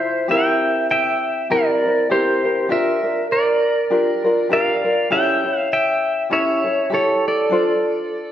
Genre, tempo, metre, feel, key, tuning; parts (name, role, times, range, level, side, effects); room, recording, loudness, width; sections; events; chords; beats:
Hawaiian; 100 BPM; 4/4; swing 58% on 8ths; A4 = 440 Hz
pedal steel guitar; melody; 0.0-8.3 s; G4 to G5; -18 LUFS; equal
vibraphone with medium mallets; second line; 0.0-8.3 s; G4 to E5; -25 LUFS; right 2 dB
tenor ukulele; accompaniment; 0.0-8.3 s; C4 to C5; -21 LUFS; left 2 dB
wet large studio reverb, RT60 1.5 s; band playing live in one room; -16 LUFS; side -10 dB against mid
0.0-8.3 A section
0.3 C7; 2.7 Gm7; 5.1 A7; 7.5 Dm7
| 0.30 0.90 1.50 2.10 | 2.70 3.30 3.90 4.50 | 5.11 5.71 6.31 6.91 | 7.51 8.11